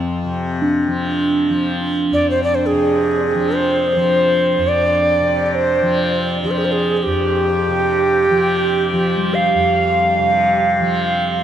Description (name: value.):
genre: world meditative, free-time meditation music.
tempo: free time.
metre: none.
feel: none.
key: unclear.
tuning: A4 = 440 Hz.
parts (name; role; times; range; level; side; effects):
tanpura; drone; 0.0-11.4 s; F2 to F3; -21 LUFS; left 1 dB; none.
quartz singing bowl; texture; 0.0-11.4 s; G3 to D4; -23 LUFS; equal; none.
bright Native American-style cedar flute; melody; 2.1-11.4 s; G4 to F5; -16 LUFS; right 2 dB; ping-pong delay.
room: wet huge ambient reverb, RT60 7.3 s.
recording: cassette tape.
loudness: -14 LUFS.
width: side -10 dB against mid.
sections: 0.0-11.4 A section.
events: none.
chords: none.